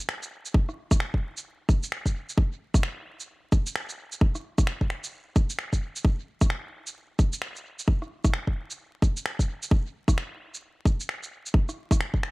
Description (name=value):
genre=future garage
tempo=131 BPM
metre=4/4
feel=swing 61% on 16ths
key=none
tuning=none
part: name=electronic shaker, finger snaps and rim click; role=drums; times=0.0-12.3 s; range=none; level=-33 LUFS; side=right 1 dB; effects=small room reverb
part: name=electronic kick drum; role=drums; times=0.5-12.2 s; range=none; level=-22 LUFS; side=equal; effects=small room reverb
room=little or no reverb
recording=echo-heavy mix, vinyl crackle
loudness=-25 LUFS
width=side -24 dB against mid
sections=0.0-12.3 A section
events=none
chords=none